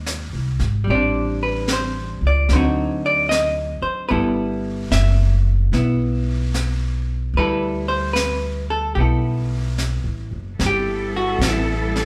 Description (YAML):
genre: jazz ballad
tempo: 74 BPM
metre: 4/4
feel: swing 67% on 8ths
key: G major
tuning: A4 = 440 Hz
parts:
  - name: vintage hollow-body jazz guitar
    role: accompaniment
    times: 0.0-12.1 s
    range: D3 to E5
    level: -24 LUFS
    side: equal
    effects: none
  - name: upright bass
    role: bass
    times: 0.0-12.1 s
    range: F#1 to Eb2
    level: -23 LUFS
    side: equal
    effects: none
  - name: jazz brush drum kit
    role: drums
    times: 0.1-12.1 s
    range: brushed snare drum, hi-hat, snare drum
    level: -30 LUFS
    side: equal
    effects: none
  - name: rich symphonic cello section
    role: sustained chords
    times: 10.6-12.1 s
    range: G3 to A4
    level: -28 LUFS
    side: equal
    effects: none
room: wet large studio reverb, RT60 0.9 s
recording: band playing live in one room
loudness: -20 LUFS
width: mono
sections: 0.0-10.6 A section; 10.6-12.1 B section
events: none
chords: 0.0 Ab; 0.9 Am7; 2.5 D7b9; 4.1 G69